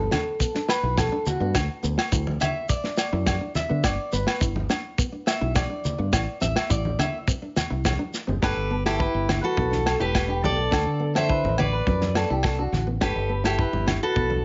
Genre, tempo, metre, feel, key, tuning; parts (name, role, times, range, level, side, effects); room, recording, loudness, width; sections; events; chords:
highlife guitar band; 105 BPM; 4/4; straight; G major; A4 = 439 Hz
nylon-string guitar; accompaniment; 0.0-14.4 s; B3 to E4; -36 LUFS; equal
electric guitar at the edge of break-up; arpeggios; 0.0-14.3 s; F#4 to E5; -32 LUFS; equal; tape echo
fingered electric bass; bass; 0.0-14.4 s; E1 to D3; -29 LUFS; equal
warm soul drum kit; drums; 0.1-14.3 s; kick drum, snare drum; -29 LUFS; equal
agogo bells; percussion; 0.1-14.0 s; -33 LUFS; equal
congas; percussion; 0.1-14.4 s; -34 LUFS; equal
shekere; percussion; 0.4-8.3 s; -33 LUFS; equal
fingerpicked steel-string acoustic guitar; melody; 8.4-14.4 s; E4 to E5; -28 LUFS; equal
light reverb; nothing above 7.6 kHz; -24 LUFS; mono
0.0-8.4 A section; 8.4-14.4 B section
clean electric guitar solo 0.0-8.4
0.0 Gadd9 (rootless); 1.6 N.C.; 3.8 G; 6.1 Am; 8.4 Gadd9; 10.7 D; 13.0 Gadd9